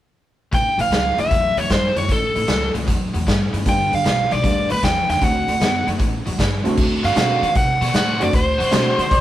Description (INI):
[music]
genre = electric blues shuffle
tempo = 154 BPM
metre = 4/4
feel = swing 68% on 8ths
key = D mixolydian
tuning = A4 = 442 Hz
[part]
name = biting lead guitar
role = melody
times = 0.5-9.2 s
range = A4 to G5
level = -19 LUFS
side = equal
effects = overdrive
[part]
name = overdriven electric guitar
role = riff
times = 0.5-9.0 s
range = G2 to F#4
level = -26 LUFS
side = left 2 dB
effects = none
[part]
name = upright bass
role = bass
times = 0.5-9.2 s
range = G1 to D3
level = -25 LUFS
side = equal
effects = none
[part]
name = raw garage drum kit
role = drums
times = 0.5-9.2 s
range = crash cymbal, hi-hat, kick drum, snare drum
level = -21 LUFS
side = equal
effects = none
[part]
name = warm upright piano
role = accompaniment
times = 3.7-9.0 s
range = G3 to F#4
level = -24 LUFS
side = right 1 dB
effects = none
[part]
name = electric guitar through a small old amp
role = second line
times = 9.0-9.2 s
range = C5 to D5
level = -24 LUFS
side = equal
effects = none
[sound]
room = moderate stone room reverb, RT60 1.2 s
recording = rough rehearsal-room recording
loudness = -16 LUFS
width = side -13 dB against mid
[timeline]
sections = 0.5-6.8 A section; 6.8-9.2 B section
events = none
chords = 0.5 A7; 3.6 G7; 5.2 D7; 6.0 A7; 6.8 D7